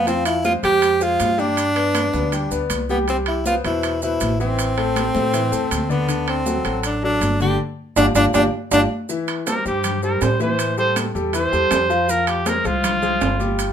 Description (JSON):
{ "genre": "latin, salsa", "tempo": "160 BPM", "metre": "4/4", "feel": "straight", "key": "C major", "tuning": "A4 = 439 Hz", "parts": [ { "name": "clear tenor saxophone", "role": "melody", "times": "0.0-8.8 s", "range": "B3 to G4", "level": "-20 LUFS", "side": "right 1 dB", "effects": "none" }, { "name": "bright concert grand piano", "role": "accompaniment", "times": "0.0-13.7 s", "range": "B2 to G5", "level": "-23 LUFS", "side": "left 4 dB", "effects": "none" }, { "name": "upright bass", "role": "bass", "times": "0.0-13.7 s", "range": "G1 to A2", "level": "-25 LUFS", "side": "equal", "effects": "none" }, { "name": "congas", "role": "percussion", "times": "0.1-13.7 s", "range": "none", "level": "-29 LUFS", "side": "equal", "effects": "none" }, { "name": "maracas", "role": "percussion", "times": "0.1-13.7 s", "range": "none", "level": "-32 LUFS", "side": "right 5 dB", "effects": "none" }, { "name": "timbales", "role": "percussion", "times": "0.1-13.7 s", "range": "none", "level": "-26 LUFS", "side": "right 7 dB", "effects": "none" }, { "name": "bright trumpet", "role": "melody", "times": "9.5-13.7 s", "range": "F4 to C5", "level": "-21 LUFS", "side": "right 2 dB", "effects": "none" } ], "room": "moderate studio reverb, RT60 0.6 s", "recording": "minimal, uncompressed stereo recording", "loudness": "-17 LUFS", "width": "side -8 dB against mid", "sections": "0.0-9.1 A section; 9.1-13.7 B section", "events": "band accent 7.6-9.1; drum fill 8.0-9.1; trumpet solo 9.1-13.7", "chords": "0.1 Fmadd9; 1.6 G; 3.1 Cmaj7; 4.6 Am; 6.1 D7; 7.6 G5; 9.1 C; 10.6 Am7; 12.1 Fmadd9", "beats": "| 0.07 0.45 0.82 1.20 | 1.58 1.95 2.33 2.70 | 3.08 3.46 3.83 4.21 | 4.58 4.96 5.33 5.71 | 6.08 6.46 6.84 7.21 | 7.59 7.96 8.34 8.71 | 9.09 9.47 9.84 10.22 | 10.59 10.97 11.34 11.71 | 12.09 12.46 12.84 13.21 | 13.59" }